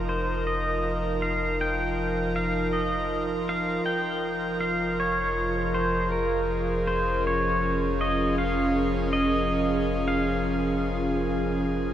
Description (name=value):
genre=ambient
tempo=53 BPM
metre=4/4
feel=straight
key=unclear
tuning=A4 = 437 Hz
part: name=pedal steel guitar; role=melody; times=0.0-11.7 s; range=Bb4 to G5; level=-28 LUFS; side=equal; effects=diffuse ambient delay
part: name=airy breathy pad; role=sustained chords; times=0.0-11.9 s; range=F3 to Eb5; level=-27 LUFS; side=right 1 dB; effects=chorus
part: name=round analog bass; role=bass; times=0.0-11.9 s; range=F1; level=-33 LUFS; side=equal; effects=none
part: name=overtone-sweeping drone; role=drone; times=0.0-11.9 s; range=F3 to F4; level=-36 LUFS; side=right 1 dB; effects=chorus, built-in reverb
room=wet huge ambient reverb, RT60 8.7 s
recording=none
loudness=-23 LUFS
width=side -10 dB against mid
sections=0.0-11.9 A section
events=none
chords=0.0 F7sus4; 3.9 Bbm7/F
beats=0.46 1.59 2.72 | 3.85 4.99 6.12 7.25 | 8.38 9.52 10.65 11.78